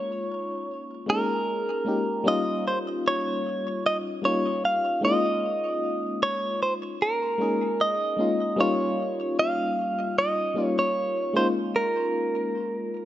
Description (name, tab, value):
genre	R&B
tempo	76 BPM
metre	4/4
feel	swing 54% on 16ths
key	unclear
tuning	A4 = 440 Hz
part	direct-recorded clean electric guitar	melody	0.0-13.1 s	Bb4 to F5	-25 LUFS	right 1 dB	none
part	FM electric piano with tremolo	accompaniment	0.0-13.1 s	G3 to Ab4	-28 LUFS	left 2 dB	none
room	light reverb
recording	nothing above 7.8 kHz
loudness	-23 LUFS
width	side -13 dB against mid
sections	0.0-13.1 A section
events	none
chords	0.0 Db69; 2.3 Eb7; 5.0 Db69; 8.6 Eb7; 11.3 Db69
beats	0.69 1.48 | 2.26 3.05 3.84 4.63 | 5.42 6.21 7.00 7.79 | 8.58 9.37 10.16 10.95 | 11.74 12.53